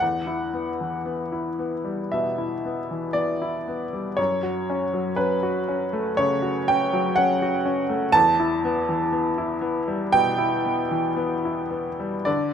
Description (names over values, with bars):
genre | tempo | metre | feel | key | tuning
neoclassical minimalist piano | 59 BPM | 4/4 | uneven beats, rubato | unclear | A4 = 440 Hz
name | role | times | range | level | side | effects
clear upright piano | solo | 0.0-12.5 s | E2 to A5 | -22 LUFS | equal | none
room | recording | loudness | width
moderate scoring stage reverb, RT60 1.9 s | minimal, uncompressed stereo recording | -22 LUFS | side -8 dB against mid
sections
0.0-12.5 A section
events
none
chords
0.0 Em; 4.2 F#m; 8.2 Em